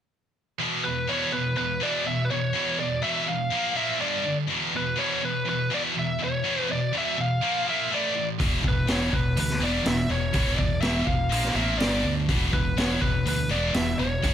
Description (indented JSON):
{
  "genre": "hard rock",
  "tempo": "123 BPM",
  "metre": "4/4",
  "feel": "straight",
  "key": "unclear",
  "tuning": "A4 = 440 Hz",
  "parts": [
    { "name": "scooped high-gain guitar", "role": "riff", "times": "0.6-14.3 s", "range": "E2 to A#3", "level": "-29 LUFS", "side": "left 9 dB", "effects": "distortion" },
    { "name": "scooped high-gain guitar", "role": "riff", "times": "0.6-14.3 s", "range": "E2 to A#3", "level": "-29 LUFS", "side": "right 11 dB", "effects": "distortion" },
    { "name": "biting lead guitar", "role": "melody", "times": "0.8-14.3 s", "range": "B4 to F5", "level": "-28 LUFS", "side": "equal", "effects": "overdrive" },
    { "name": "fuzz fingered electric bass", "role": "bass", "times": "8.4-14.3 s", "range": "E1 to E2", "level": "-28 LUFS", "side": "equal", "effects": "overdrive" },
    { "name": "raw garage drum kit", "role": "drums", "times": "8.4-14.3 s", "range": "hi-hat, kick drum, snare drum", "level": "-26 LUFS", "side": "equal", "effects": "none" }
  ],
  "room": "light reverb, studio ambience",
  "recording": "none",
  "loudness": "-23 LUFS",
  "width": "side -9 dB against mid",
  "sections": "0.6-14.3 A section",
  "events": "none",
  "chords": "0.6 E5; 3.5 A#5; 4.0 G5; 4.5 E5; 7.4 A#5; 7.9 A5; 8.4 E5; 11.3 A#5; 11.8 G5; 12.3 E5"
}